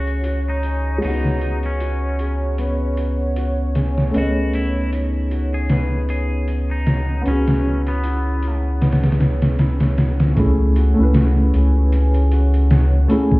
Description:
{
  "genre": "trip hop",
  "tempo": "77 BPM",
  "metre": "4/4",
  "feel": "swing 56% on 16ths",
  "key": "unclear",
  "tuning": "A4 = 440 Hz",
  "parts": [
    { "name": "twangy electric guitar", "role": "melody", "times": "0.0-8.6 s", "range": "B3 to G#4", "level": "-31 LUFS", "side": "left 1 dB", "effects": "tape echo" },
    { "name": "felt-muted upright piano", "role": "accompaniment", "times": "0.0-13.4 s", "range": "E3 to D#5", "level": "-23 LUFS", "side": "equal", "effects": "tremolo, low-pass filter" },
    { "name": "dark analog pad", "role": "sustained chords", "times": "0.0-13.4 s", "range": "C#5", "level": "-29 LUFS", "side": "right 1 dB", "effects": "chorus" },
    { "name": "concert harp", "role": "arpeggios", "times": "0.0-13.4 s", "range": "B3 to G#4", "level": "-29 LUFS", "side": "equal", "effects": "tape echo" },
    { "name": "round analog bass", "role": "bass", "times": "0.0-13.1 s", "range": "C#2", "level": "-18 LUFS", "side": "equal", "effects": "none" },
    { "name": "trip hop sampler-style drum kit", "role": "drums", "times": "0.1-13.4 s", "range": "hi-hat, kick drum, snare drum", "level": "-19 LUFS", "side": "equal", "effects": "overdrive, low-pass filter on hats, low-pass filter on snare, low-pass filter on kick, low-pass filter on room" }
  ],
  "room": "little or no reverb",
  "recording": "heard muffled through a wall, stone room reverb, vinyl crackle, EQ",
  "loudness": "-16 LUFS",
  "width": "side -21 dB against mid",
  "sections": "0.0-10.4 A section; 10.4-13.4 B section",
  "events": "filter sweep on felt piano 0.0-10.4",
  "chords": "0.0 F#m9/C#; 1.0 G#m7/C#; 4.1 B13/C#; 7.3 E69/C#; 10.4 F#m9/C#",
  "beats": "0.25 | 1.03 1.81 2.58 3.37 | 4.14 4.92 5.70 6.48 | 7.26 8.04 8.82 9.60 | 10.38 11.16 11.94 12.71"
}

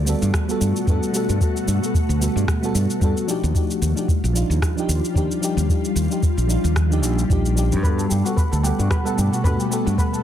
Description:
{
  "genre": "sunset chillout",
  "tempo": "112 BPM",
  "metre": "4/4",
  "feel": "swing 56% on 16ths",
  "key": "unclear",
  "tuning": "A4 = 440 Hz",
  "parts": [
    { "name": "ethereal airy pad", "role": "sustained chords", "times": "0.0-10.2 s", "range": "B2 to F#5", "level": "-26 LUFS", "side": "left 2 dB", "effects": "ensemble chorus, built-in reverb, phaser" },
    { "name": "fingered electric bass", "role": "bass", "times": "0.0-9.9 s", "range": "Bb1 to G2", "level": "-20 LUFS", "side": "equal", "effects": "none" },
    { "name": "mellow FM electric piano", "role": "accompaniment", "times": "0.1-10.2 s", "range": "F3 to F#5", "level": "-25 LUFS", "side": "moving between left 4 dB and right 5 dB", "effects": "chorus, auto-pan, digital delay" },
    { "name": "electronic shaker and rim click", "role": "drums", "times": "0.1-10.2 s", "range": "none", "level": "-30 LUFS", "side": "equal", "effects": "small room ambience, soft clipping on snare" },
    { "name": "electronic kick drum", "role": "drums", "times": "0.3-10.1 s", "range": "none", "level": "-20 LUFS", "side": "equal", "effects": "small room ambience" },
    { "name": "steel pan", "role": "arpeggios", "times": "7.8-10.2 s", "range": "F#4 to B4", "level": "-28 LUFS", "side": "left 1 dB", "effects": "digital delay" }
  ],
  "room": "light reverb",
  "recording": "dense, heavily limited modern master",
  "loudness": "-18 LUFS",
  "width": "side -10 dB against mid",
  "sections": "0.0-10.2 A section",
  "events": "none",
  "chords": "0.0 Gmaj9; 3.3 Ebmaj9; 7.8 Gmaj9",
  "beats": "0.34 0.87 | 1.41 1.95 2.48 3.02 | 3.55 4.09 4.62 5.16 | 5.70 6.23 6.77 7.30 | 7.84 8.37 8.91 9.45 | 9.98"
}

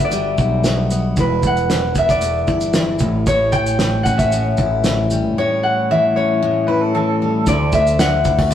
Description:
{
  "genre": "acoustic pop",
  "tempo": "114 BPM",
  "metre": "4/4",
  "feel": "straight",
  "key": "unclear",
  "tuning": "A4 = 440 Hz",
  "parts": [
    { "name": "Celtic harp", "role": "melody", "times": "0.0-8.5 s", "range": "B4 to G5", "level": "-18 LUFS", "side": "left 1 dB", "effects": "none" },
    { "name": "picked steel-string acoustic guitar", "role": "accompaniment", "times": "0.0-8.5 s", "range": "E2 to F#4", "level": "-21 LUFS", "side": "left 3 dB", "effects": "none" },
    { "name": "fretless electric bass", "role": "bass", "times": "0.0-8.5 s", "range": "E1 to D2", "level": "-21 LUFS", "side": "right 1 dB", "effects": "none" },
    { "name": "cloth-damped thuddy drum kit", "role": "drums", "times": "0.1-8.5 s", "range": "kick drum, shaker, snare drum", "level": "-20 LUFS", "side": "right 1 dB", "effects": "none" },
    { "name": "clean electric guitar", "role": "second line", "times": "6.7-7.4 s", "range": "A4 to B4", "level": "-21 LUFS", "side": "right 2 dB", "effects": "tremolo" }
  ],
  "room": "wet stone room reverb, RT60 1.2 s",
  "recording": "rough rehearsal-room recording, warm saturation",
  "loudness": "-14 LUFS",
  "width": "side -10 dB against mid",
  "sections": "0.0-7.5 A section; 7.5-8.5 B section",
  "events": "none",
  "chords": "0.0 Gmaj7; 1.2 Em7; 3.0 A7; 7.5 D",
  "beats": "0.13 0.65 | 1.18 1.70 2.23 2.75 | 3.28 3.80 4.33 4.85 | 5.38 5.90 6.43 6.95 | 7.48 8.00 8.52"
}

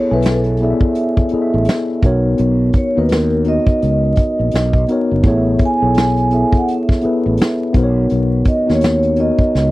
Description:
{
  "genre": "R&B, neo-soul",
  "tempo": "84 BPM",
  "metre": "4/4",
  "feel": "swing 60% on 16ths",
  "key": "unclear",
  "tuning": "A4 = 440 Hz",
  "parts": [
    { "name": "vibraphone with soft mallets", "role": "melody", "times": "0.0-9.7 s", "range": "A4 to G#5", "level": "-20 LUFS", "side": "right 1 dB", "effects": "slapback echo" },
    { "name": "mellow tine electric piano", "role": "accompaniment", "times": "0.0-9.7 s", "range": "B3 to G#5", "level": "-17 LUFS", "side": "left 1 dB", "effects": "slow stereo tremolo" },
    { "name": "fretless electric bass", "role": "bass", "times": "0.1-9.7 s", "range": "F#1 to D#2", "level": "-17 LUFS", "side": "equal", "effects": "wide subtle chorus" },
    { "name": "vintage brush drum kit", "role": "drums", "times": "0.2-9.7 s", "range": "hi-hat, kick drum, snare drum", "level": "-15 LUFS", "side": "equal", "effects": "none" }
  ],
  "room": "moderate booth ambience, RT60 0.2 s",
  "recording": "dry, close 1970s-style studio recording, vinyl crackle",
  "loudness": "-13 LUFS",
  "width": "side -18 dB against mid",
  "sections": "0.0-9.7 A section",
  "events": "drum fill 9.5",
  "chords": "0.0 Amaj9; 2.0 Bmaj9; 5.2 Amaj9; 7.7 Bmaj9",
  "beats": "0.24 0.96 1.67 | 2.38 3.10 3.81 4.53 | 5.24 5.96 6.67 7.38 | 8.10 8.81 9.53"
}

